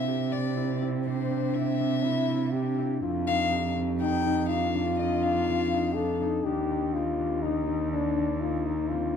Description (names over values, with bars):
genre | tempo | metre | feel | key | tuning
contemporary instrumental, chamber music in an uneven meter | 122 BPM | 7/4 | straight | unclear | A4 = 437 Hz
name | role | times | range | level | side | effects
warm violin | melody | 0.0-6.2 s | C5 to G5 | -32 LUFS | left 6 dB | none
warm French horn | second line | 0.0-9.2 s | C4 to A4 | -31 LUFS | left 3 dB | none
concert harp | arpeggios | 0.0-9.2 s | Bb3 to G4 | -30 LUFS | left 5 dB | none
warm cello | bass | 0.0-9.2 s | Eb2 to C3 | -30 LUFS | right 7 dB | none
room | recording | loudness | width
moderate recital hall reverb, RT60 1.3 s | dark, warm production | -25 LUFS | side -7 dB against mid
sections
0.0-9.2 A section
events
none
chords
0.0 C; 3.0 F7sus2; 6.5 Ebmaj7